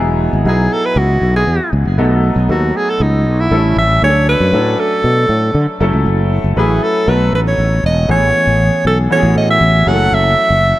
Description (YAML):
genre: polished 1980s jazz-funk pop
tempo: 118 BPM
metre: 4/4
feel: straight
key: unclear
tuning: A4 = 440 Hz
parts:
  - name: clear baby grand piano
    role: accompaniment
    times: 0.0-10.8 s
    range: E3 to B4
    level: -18 LUFS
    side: equal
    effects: lush chorus
  - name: sustaining fretless electric bass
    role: bass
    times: 0.0-10.7 s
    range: E1 to D3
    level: -14 LUFS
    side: equal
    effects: none
  - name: warm alto saxophone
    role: melody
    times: 0.5-10.8 s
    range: D#4 to F#5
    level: -15 LUFS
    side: right 1 dB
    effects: none
room: light reverb, small room reverb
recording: none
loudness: -11 LUFS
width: side -15 dB against mid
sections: 0.0-8.1 A section; 8.1-10.8 B section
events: none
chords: 0.0 Emaj9; 2.0 B7; 3.5 A7; 4.0 Dmaj7; 5.8 F#m7; 7.1 B7; 8.1 Amaj9; 9.9 F#m7